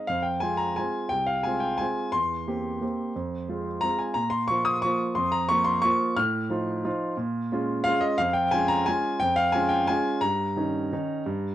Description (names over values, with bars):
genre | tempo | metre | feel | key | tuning
classical, piano waltz | 177 BPM | 3/4 | rubato | F minor | A4 = 440 Hz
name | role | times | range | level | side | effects
warm concert grand piano | solo | 0.0-11.5 s | C2 to F6 | -23 LUFS | equal | none
room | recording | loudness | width
light reverb | worn, warbling old tape, cassette tape, warbly pitch drift | -23 LUFS | side -12 dB against mid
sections
0.1-11.5 A section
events
none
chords
0.1 Fm; 2.1 C7/E; 3.2 Fm; 4.2 Bbm; 6.2 F7/A; 7.2 Bbm7; 8.2 Db/F; 10.2 Eb7/G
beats
| 0.09 0.43 0.78 | 1.12 1.46 1.81 | 2.15 2.48 2.83 | 3.17 3.50 3.84 | 4.18 4.50 4.85 | 5.18 5.52 5.86 | 6.19 6.52 6.86 | 7.19 7.52 7.86 | 8.20 8.53 8.87 | 9.21 9.54 9.89 | 10.23 10.56 10.91 | 11.26